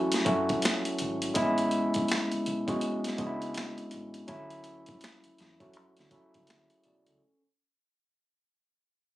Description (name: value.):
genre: R&B, neo-soul.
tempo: 82 BPM.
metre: 4/4.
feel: swing 62% on 16ths.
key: unclear.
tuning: A4 = 440 Hz.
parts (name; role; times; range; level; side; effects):
overdriven tine electric piano; accompaniment; 0.0-7.4 s; F#3 to D5; -29 LUFS; equal; none.
deep dub fingered electric bass; bass; 0.0-7.2 s; G#1 to F#2; -42 LUFS; equal; none.
boom bap sampler-style drum kit; drums; 0.1-7.2 s; finger snaps, hi-hat, kick drum, snare drum; -32 LUFS; equal; overdrive.
room: moderate small room reverb, RT60 0.5 s.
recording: recorded on a phone in the room, studio ambience, compression.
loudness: -27 LUFS.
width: side -15 dB against mid.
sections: 0.0-7.2 A section.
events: fade-out 0.0-7.2.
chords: 0.0 Dmaj9 (rootless); 1.4 Amaj9; 4.3 Dmaj9.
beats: 0.62 | 1.35 2.09 2.82 3.55 | 4.28 5.01 5.75 6.48.